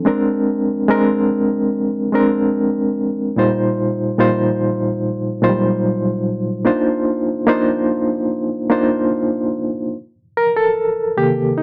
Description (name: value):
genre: soul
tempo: 73 BPM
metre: 4/4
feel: straight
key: unclear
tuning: A4 = 442 Hz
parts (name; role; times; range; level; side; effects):
- barky reed electric piano; solo; 0.0-11.6 s; Bb2 to C5; -18 LUFS; equal; overdrive, medium tremolo
room: light reverb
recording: dry, close 1970s-style studio recording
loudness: -18 LUFS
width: mono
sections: 0.0-10.0 A section; 10.0-11.6 B section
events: reed electric piano solo 10.0-11.6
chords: 0.1 Bb9; 3.4 Eb69/Bb; 6.7 Cm11; 10.0 Cm7